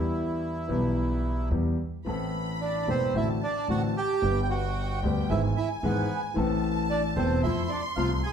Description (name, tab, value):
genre	tango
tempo	112 BPM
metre	4/4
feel	rubato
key	unclear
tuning	A4 = 439 Hz
part	bandoneon	melody	0.0-8.3 s	B3 to G#5	-30 LUFS	right 4 dB	plate reverb
part	warm concert grand piano	accompaniment	0.0-8.2 s	E1 to B4	-29 LUFS	left 2 dB	none
part	upright bass	bass	0.0-8.2 s	E1 to F2	-31 LUFS	right 1 dB	none
part	clear chamber violin section	second line	2.1-8.3 s	G5 to C6	-36 LUFS	right 1 dB	none
room	wet club reverb, RT60 0.9 s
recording	heard from further back in the room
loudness	-25 LUFS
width	side -8 dB against mid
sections	0.0-2.1 A section; 2.1-8.3 B section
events	none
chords	0.0 Em; 2.1 Am; 3.1 D7/A; 4.2 G; 5.3 E/G#; 6.4 Am; 7.4 F